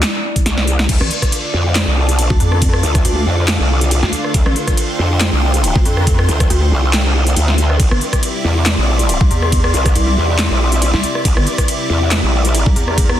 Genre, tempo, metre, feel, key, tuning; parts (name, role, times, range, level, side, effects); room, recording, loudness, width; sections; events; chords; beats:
heavy wobble dubstep; 139 BPM; 4/4; swing 54% on 16ths, half-time; D minor; A4 = 440 Hz
big-room dance drum kit; drums; 0.0-13.2 s; crash cymbal, handclaps, hi-hat, ride cymbal, rim click, snare drum; -19 LUFS; equal; soft clipping on snare
warbly tape-like pad; texture; 0.0-13.2 s; E4 to C6; -25 LUFS; left 1 dB; chorus, built-in reverb, sidechain pumping
electronic kick drum; drums; 0.4-13.1 s; -15 LUFS; equal; overdrive
growl bass; bass; 0.5-12.6 s; Bb1 to F2; -15 LUFS; equal; chorus, overdrive
lush unison pad; sustained chords; 0.9-13.2 s; C3 to D5; -23 LUFS; equal; chorus, sidechain pumping
pulsing pluck wobble bass; bass; 1.0-13.2 s; G1 to F2; -16 LUFS; equal; chorus, overdrive
little or no reverb; dense, heavily limited modern master; -12 LUFS; side -11 dB against mid
0.0-13.2 A section
drum fill 0.5-0.9
0.0 Cadd9; 0.9 Dm; 7.8 Cadd9
0.03 0.46 | 0.89 1.32 1.75 2.19 | 2.62 3.05 3.48 3.91 | 4.34 4.78 5.21 5.64 | 6.07 6.50 6.93 7.37 | 7.80 8.23 8.66 9.09 | 9.52 9.96 10.39 10.82 | 11.25 11.68 12.11 12.54 | 12.98